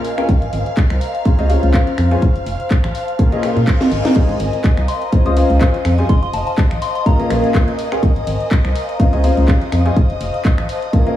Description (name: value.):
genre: piano house.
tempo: 124 BPM.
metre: 4/4.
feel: swing 55% on 16ths.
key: unclear.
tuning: A4 = 438 Hz.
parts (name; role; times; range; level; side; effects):
string machine, violins; sustained chords; 0.0-11.2 s; Eb5 to F6; -27 LUFS; left 2 dB; ensemble chorus, sidechain pumping.
house drum kit; drums; 0.0-11.2 s; crash cymbal, finger snaps, handclaps, hi-hat, ride cymbal, snare drum; -24 LUFS; equal; none.
airy breathy pad; texture; 0.0-11.2 s; Bb4 to Bb5; -25 LUFS; left 1 dB; chorus, sidechain pumping.
clear grand piano; riff; 0.2-11.2 s; Bb2 to Ab5; -21 LUFS; left 2 dB; analog chorus, sidechain pumping, tape echo.
organ-like FM bass; bass; 0.3-10.7 s; F1 to Bb2; -17 LUFS; equal; sidechain pumping.
electronic kick drum; drums; 0.3-11.0 s; none; -14 LUFS; equal; none.
reverse cymbal; sound effects; 3.4-4.2 s; none; -34 LUFS; left 3 dB; none.
soft synth bell; melody; 4.9-7.5 s; A5 to Eb6; -26 LUFS; left 4 dB; chorus, phaser, tape echo.
room: moderate lush hall reverb, RT60 1.8 s, digital ambience.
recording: dreamy mix soaked in reverb, small room ambience.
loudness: -13 LUFS.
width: side -12 dB against mid.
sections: 0.0-11.2 A section.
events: reverse cymbal 3.4-4.2; drum fill 3.8-4.2.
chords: 0.3 Ab6; 1.3 Dbmaj7; 2.2 F; 3.2 Bbm7; 4.2 Ab6; 5.1 Dbmaj7; 6.1 F7; 7.1 Bbm7; 8.0 Ab6; 9.0 Dbmaj7; 10.0 F7.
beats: | 0.29 0.77 1.25 1.74 | 2.22 2.71 3.19 3.67 | 4.16 4.64 5.12 5.61 | 6.09 6.58 7.06 7.54 | 8.03 8.51 9.00 9.48 | 9.96 10.45 10.93.